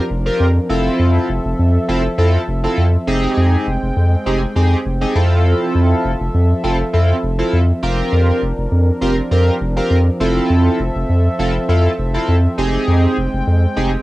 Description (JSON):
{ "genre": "pop", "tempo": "101 BPM", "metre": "4/4", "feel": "straight", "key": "F major", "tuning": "A4 = 440 Hz", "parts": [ { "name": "chorused polysynth", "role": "accompaniment", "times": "0.0-13.9 s", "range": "C4 to Bb4", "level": "-18 LUFS", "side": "right 1 dB", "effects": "cassette tape, plate reverb" }, { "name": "warm analog pad", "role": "sustained chords", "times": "0.0-14.0 s", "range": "F3 to G5", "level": "-23 LUFS", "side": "equal", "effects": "chorus, cassette tape" }, { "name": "saturated sub bass", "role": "bass", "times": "0.1-14.0 s", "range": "F1 to F2", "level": "-15 LUFS", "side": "equal", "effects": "none" } ], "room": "light reverb", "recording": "home recording on cassette", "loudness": "-13 LUFS", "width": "side -17 dB against mid", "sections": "0.0-14.0 A section", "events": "none", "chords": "0.0 C7sus4/F; 0.7 Fmaj7; 3.1 Abmaj7/F; 5.2 Fmaj7; 7.8 C7sus4/F; 10.2 Fmaj7; 12.6 Abmaj7/F" }